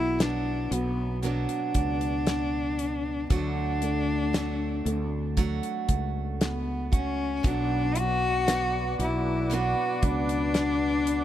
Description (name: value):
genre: pop ballad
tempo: 58 BPM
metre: 4/4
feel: straight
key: B minor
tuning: A4 = 440 Hz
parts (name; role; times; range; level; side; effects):
- warm cello; melody; 0.0-11.2 s; B3 to F#4; -28 LUFS; left 3 dB; none
- felt-muted upright piano; accompaniment; 0.0-11.2 s; B2 to F#4; -36 LUFS; equal; none
- picked steel-string acoustic guitar; arpeggios; 0.0-11.2 s; B2 to F#4; -34 LUFS; right 10 dB; tape echo
- fretless electric bass; bass; 0.0-11.2 s; B1 to D2; -31 LUFS; equal; analog chorus
- damped 70s drum kit; drums; 0.2-11.2 s; hi-hat, kick drum, snare drum; -27 LUFS; equal; none
- warm analog pad; sustained chords; 7.5-11.2 s; B4 to D6; -36 LUFS; equal; chorus
room: light reverb, small room reverb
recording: none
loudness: -25 LUFS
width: side -12 dB against mid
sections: 0.0-11.2 A section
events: none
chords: 0.0 Bm; 3.3 D; 7.4 Bm